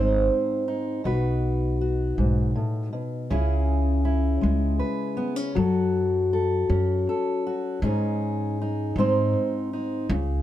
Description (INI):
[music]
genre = acoustic folk duo or small band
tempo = 53 BPM (dotted quarters)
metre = 6/8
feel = straight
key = unclear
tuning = A4 = 442 Hz
[part]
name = fingerpicked steel-string acoustic guitar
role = accompaniment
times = 0.0-10.4 s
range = G#2 to B#4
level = -24 LUFS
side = left 1 dB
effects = none
[part]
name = upright bass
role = bass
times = 0.0-10.4 s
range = G#1 to G#2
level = -25 LUFS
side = right 1 dB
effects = none
[sound]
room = moderate studio reverb, RT60 0.8 s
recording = none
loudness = -22 LUFS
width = side -12 dB against mid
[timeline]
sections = 0.0-10.1 A section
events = none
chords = 0.0 G#; 1.1 B; 3.3 C#m; 5.6 F#m; 7.8 G#sus4; 9.0 G#